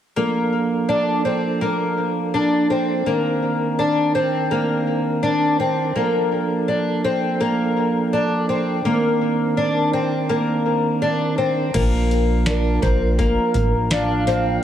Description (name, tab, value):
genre	dream pop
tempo	83 BPM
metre	4/4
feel	straight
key	Bb major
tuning	A4 = 441 Hz
part	percussive tonewheel organ	sustained chords	0.2-14.6 s	Eb3 to Bb4	-23 LUFS	right 4 dB	chorus vibrato, slow rotary speaker
part	fingerpicked twelve-string acoustic guitar	arpeggios	0.2-14.6 s	Bb3 to D4	-20 LUFS	left 2 dB	lush chorus, tape echo
part	plucky analog bass	bass	11.7-14.6 s	A1 to Bb1	-21 LUFS	equal	none
part	booming analog drum machine	drums	11.7-14.4 s	crash cymbal, hi-hat, kick drum, snare drum	-23 LUFS	equal	tape echo
part	warm velvety synth lead	melody	12.5-14.6 s	Bb4 to F5	-24 LUFS	right 3 dB	chorus, tape echo
room	moderate plate reverb, RT60 2.5 s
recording	echo-heavy mix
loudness	-17 LUFS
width	side -10 dB against mid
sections	0.2-11.7 A section; 11.7-14.6 B section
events	none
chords	0.2 Bbmaj7; 3.1 Cm9; 6.0 Bbmaj7; 8.8 Cm9; 11.7 Bbmaj7